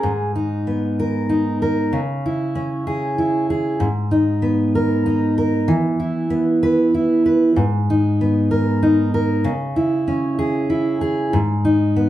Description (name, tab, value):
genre	pop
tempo	64 BPM (dotted quarters)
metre	6/8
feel	straight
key	G# minor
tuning	A4 = 439 Hz
part	fingerpicked steel-string acoustic guitar	solo	0.0-12.1 s	G#2 to B4	-16 LUFS	equal	none
room	moderate large studio reverb, RT60 1.1 s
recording	band playing live in one room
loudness	-16 LUFS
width	side -13 dB against mid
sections	0.1-12.1 A section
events	none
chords	0.1 G#madd9; 1.9 C#m; 3.8 G#madd9; 5.7 E5; 7.6 G#madd9; 9.4 C#m; 11.3 G#m